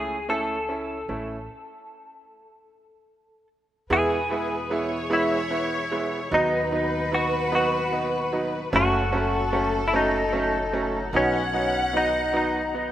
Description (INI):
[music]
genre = six-eight pop ballad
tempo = 50 BPM (dotted quarters)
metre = 6/8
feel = straight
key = E major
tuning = A4 = 440 Hz
[part]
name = direct-recorded clean electric guitar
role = melody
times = 0.0-12.9 s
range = C#4 to A4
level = -25 LUFS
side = left 1 dB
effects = ensemble chorus, digital delay
[part]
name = bright upright piano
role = accompaniment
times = 0.0-12.9 s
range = F#3 to E4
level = -27 LUFS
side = right 3 dB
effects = none
[part]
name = upright bass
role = bass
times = 0.0-12.9 s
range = F#1 to E2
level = -34 LUFS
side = equal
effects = none
[part]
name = warm symphonic violin section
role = second line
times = 3.9-12.9 s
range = A4 to F#5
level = -28 LUFS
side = left 2 dB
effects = digital delay
[part]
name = tonewheel organ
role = sustained chords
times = 3.9-12.9 s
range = A2 to G#4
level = -37 LUFS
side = left 1 dB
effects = none
[sound]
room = moderate lush hall reverb, RT60 2.7 s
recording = rough home demo mix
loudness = -22 LUFS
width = side -12 dB against mid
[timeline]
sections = 0.0-3.9 A section; 3.9-12.9 B section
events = stop 1.5-3.9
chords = 0.0 A/C#; 1.5 N.C.; 3.9 E; 6.3 B/D#; 8.7 F#m; 11.1 B